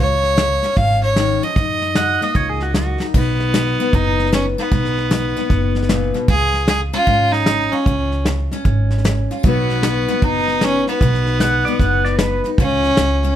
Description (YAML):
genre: honky-tonk and classic country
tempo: 152 BPM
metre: 4/4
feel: swing 64% on 8ths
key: B lydian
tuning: A4 = 440 Hz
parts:
  - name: clear fiddle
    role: melody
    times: 0.0-13.3 s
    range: B3 to E#5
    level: -19 LUFS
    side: right 1 dB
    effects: none
  - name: picked steel-string acoustic guitar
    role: accompaniment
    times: 0.0-13.4 s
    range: F#2 to F#4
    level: -23 LUFS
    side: left 5 dB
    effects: none
  - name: upright bass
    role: bass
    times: 0.0-13.3 s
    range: F#1 to F#2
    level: -20 LUFS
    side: equal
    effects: none
  - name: soft brush drum kit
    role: drums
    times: 0.2-13.3 s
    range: crash cymbal, hi-hat, kick drum, snare drum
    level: -20 LUFS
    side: equal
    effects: none
  - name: pedal steel guitar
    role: second line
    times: 2.0-3.1, 11.4-12.5 s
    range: F#4 to F#5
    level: -21 LUFS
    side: right 3 dB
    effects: none
room: light reverb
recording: close, detailed microphones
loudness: -15 LUFS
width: side -11 dB against mid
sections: 0.0-3.1 A section; 3.1-13.4 A section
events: drum fill 2.9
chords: 0.0 C#; 1.6 F#6; 3.1 B; 6.3 C#; 9.4 B; 12.6 C#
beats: 0.38 0.77 1.17 | 1.56 1.95 2.35 2.74 | 3.13 3.53 3.92 4.32 | 4.71 5.10 5.50 5.89 | 6.29 6.68 7.07 7.47 | 7.86 8.25 8.65 9.04 | 9.43 9.83 10.22 10.61 | 11.01 11.40 11.79 12.19 | 12.58 12.97